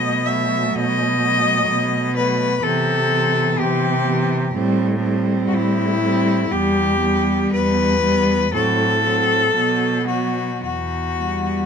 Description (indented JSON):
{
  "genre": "classical, lyrical piece for cello ensemble",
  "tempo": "54-65 BPM",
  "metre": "4/4",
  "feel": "rubato",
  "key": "E minor",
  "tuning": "A4 = 440 Hz",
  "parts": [
    { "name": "rich cello", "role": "melody", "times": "0.0-11.7 s", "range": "E4 to E5", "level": "-19 LUFS", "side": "left 4 dB", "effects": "none" },
    { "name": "rich cello", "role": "second line", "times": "0.0-11.7 s", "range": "A3 to C4", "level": "-26 LUFS", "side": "right 11 dB", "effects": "none" },
    { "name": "warm cello", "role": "accompaniment", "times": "0.0-11.7 s", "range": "E3 to G3", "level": "-23 LUFS", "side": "left 1 dB", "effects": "none" },
    { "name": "rich cello", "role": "bass", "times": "0.0-11.6 s", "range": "E2 to C3", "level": "-23 LUFS", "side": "right 2 dB", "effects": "none" }
  ],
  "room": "moderate studio reverb, RT60 0.6 s",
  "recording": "minimal, uncompressed stereo recording",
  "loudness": "-16 LUFS",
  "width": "side -7 dB against mid",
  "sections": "0.0-11.7 A section",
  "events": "none",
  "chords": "0.0 B7; 2.6 Cmaj7; 4.5 Am7; 6.5 Em; 8.5 F#dim/A; 9.6 B5; 10.6 Em",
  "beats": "0.76 1.69 | 2.63 3.58 4.55 5.53 | 6.52 7.53 8.53 9.55 | 10.63"
}